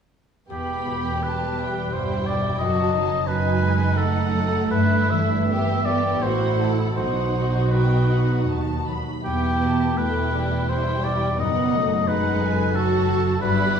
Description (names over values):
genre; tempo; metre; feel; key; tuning
classical; 74-91 BPM; 3/4; rubato; E minor; A4 = 440 Hz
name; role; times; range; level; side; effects
dark symphonic violin section; melody; 0.5-13.8 s; E5 to B5; -33 LUFS; left 2 dB; none
dark studio violin section; second line; 0.5-13.8 s; D#4 to A4; -30 LUFS; left 3 dB; none
warm oboe; second line; 0.5-13.8 s; G4 to E5; -25 LUFS; equal; none
warm symphonic viola section; accompaniment; 0.5-13.8 s; F#3 to E4; -27 LUFS; right 3 dB; none
concert harp; arpeggios; 0.5-13.8 s; E2 to E5; -28 LUFS; left 6 dB; none
dark symphonic double bass section; bass; 0.5-13.8 s; E1 to D#2; -26 LUFS; right 3 dB; none
rich symphonic cello section; bass; 0.5-13.8 s; D#2 to B2; -28 LUFS; right 3 dB; none
room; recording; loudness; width
moderate scoring stage reverb, RT60 1.9 s; small room ambience; -19 LUFS; side -7 dB against mid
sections
0.5-13.8 A section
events
none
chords
0.5 Em; 2.6 D#dim/F#; 4.7 Em/G; 6.2 F#m7b5/A; 7.0 B; 9.2 Em; 11.4 D#dim/F#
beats
| 0.50 1.23 1.93 | 2.60 3.29 3.97 | 4.72 5.49 6.22 | 6.97 7.72 8.48 | 9.24 9.98 10.69 | 11.39 12.08 12.75 | 13.42